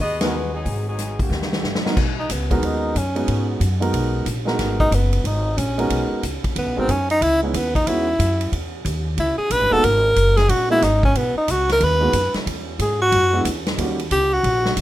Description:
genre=jazz, big band swing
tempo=183 BPM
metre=4/4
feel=swing 64% on 8ths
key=G# minor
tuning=A4 = 439 Hz
part: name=mellow saxophone section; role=melody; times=0.0-1.8 s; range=C#3 to D#5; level=-27 LUFS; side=left 2 dB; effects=plate reverb
part: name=upright bass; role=bass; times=0.0-14.8 s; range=E1 to G#2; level=-23 LUFS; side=equal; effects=none
part: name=swinging big-band drum kit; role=drums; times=0.0-14.8 s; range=crash cymbal, hi-hat, kick drum, ride cymbal, snare drum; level=-25 LUFS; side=equal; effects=none
part: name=warm grand piano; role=accompaniment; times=0.2-14.0 s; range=G#2 to C#5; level=-24 LUFS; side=right 2 dB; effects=none
part: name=breathy tenor saxophone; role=melody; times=2.2-14.8 s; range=G#3 to B4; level=-19 LUFS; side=equal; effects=none
room=light reverb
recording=rough home demo mix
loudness=-17 LUFS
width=side -14 dB against mid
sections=0.0-2.0 A section; 2.0-14.8 B section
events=band accent 0.2; drum fill 1.3-2.0; tenor saxophone solo 2.0-14.8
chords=0.0 D#7#9; 2.0 G#m7; 7.2 C#m7; 9.8 G#m7; 12.5 E; 13.8 D#7#9

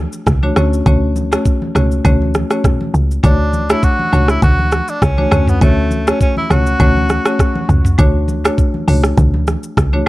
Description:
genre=afrobeats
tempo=101 BPM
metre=4/4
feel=swing 55% on 16ths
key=D major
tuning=A4 = 439 Hz
part: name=woody log drum bass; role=bass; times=0.0-10.0 s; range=C#2 to D2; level=-14 LUFS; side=equal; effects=none
part: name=afro-pop drum kit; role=drums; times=0.1-9.9 s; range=hi-hat, kick drum, rim click, shaker, toms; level=-14 LUFS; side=equal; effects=none
part: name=congas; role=percussion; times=0.3-10.1 s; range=none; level=-24 LUFS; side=right 2 dB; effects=none
part: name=marimba with medium hard mallets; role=accompaniment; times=0.4-10.1 s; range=A3 to C#5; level=-19 LUFS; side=left 2 dB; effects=none
part: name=breathy tenor saxophone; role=melody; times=3.2-7.7 s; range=A3 to F#4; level=-19 LUFS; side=equal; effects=analog delay
room=small room reverb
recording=dry, gritty hardware recording, cassette tape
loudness=-11 LUFS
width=side -18 dB against mid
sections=0.0-3.2 A section; 3.2-10.1 B section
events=none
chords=0.0 Dmaj7

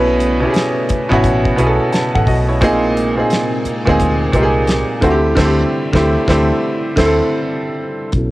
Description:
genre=R&B, neo-soul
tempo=87 BPM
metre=4/4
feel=swing 64% on 16ths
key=unclear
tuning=A4 = 441 Hz
part: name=bright baby grand piano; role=accompaniment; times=0.0-8.3 s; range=A#2 to A5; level=-14 LUFS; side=right 1 dB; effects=low-pass filter, cassette tape
part: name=phased string machine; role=sustained chords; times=0.0-8.1 s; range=B#2 to E4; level=-27 LUFS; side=left 2 dB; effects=none
part: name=vintage muted fingered electric bass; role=bass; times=0.0-8.3 s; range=G#1 to D2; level=-18 LUFS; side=equal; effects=none
part: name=damped 70s drum kit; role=drums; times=0.2-8.3 s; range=crash cymbal, hi-hat, kick drum, snare drum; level=-19 LUFS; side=equal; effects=cassette tape
room=small room ambience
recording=home recording on cassette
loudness=-13 LUFS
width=side -18 dB against mid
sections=0.0-8.1 A section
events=band accent 5.4-8.1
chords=0.0 B9sus4; 2.6 A#9sus4; 5.0 D9sus4

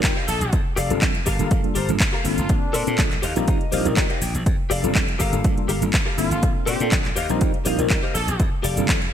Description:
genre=filtered disco house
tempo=122 BPM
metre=4/4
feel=swing 53% on 16ths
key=F major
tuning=A4 = 440 Hz
part: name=mellow tine electric piano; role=accompaniment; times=0.0-9.0 s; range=G3 to Bb4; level=-26 LUFS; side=equal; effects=medium stereo tremolo, phaser, sidechain pumping
part: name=direct-recorded clean electric guitar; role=riff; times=0.0-8.9 s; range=G4 to G5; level=-28 LUFS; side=left 4 dB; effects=ensemble chorus, sidechain pumping
part: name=slap bass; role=bass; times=0.0-9.1 s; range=F1 to Bb2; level=-26 LUFS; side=equal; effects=tube saturation, sidechain pumping
part: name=electronic kick drum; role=drums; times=0.0-9.0 s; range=none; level=-22 LUFS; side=equal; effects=overdrive
part: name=house drum kit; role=drums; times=0.0-9.1 s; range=handclaps, hi-hat, shaker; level=-26 LUFS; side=equal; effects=overdrive, sidechain pumping on hats, sidechain pumping on perc, gated reverb
part: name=bright horn section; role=melody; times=0.3-3.0, 6.2-8.4 s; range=D4 to A4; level=-31 LUFS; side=left 1 dB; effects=vintage 12-bit sampler grit, sidechain pumping, ping-pong delay
room=light reverb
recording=bright 1980s-style digital production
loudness=-18 LUFS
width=side -9 dB against mid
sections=0.0-9.1 A section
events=clean electric guitar fill 0.0-0.5, 3.0-4.5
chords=0.0 Eb69; 0.5 F69; 1.3 Gm9; 2.5 Bbmaj9; 3.2 Eb69; 4.5 F69; 5.2 Gm9; 6.4 Bbmaj9; 7.2 Eb69; 8.4 F69

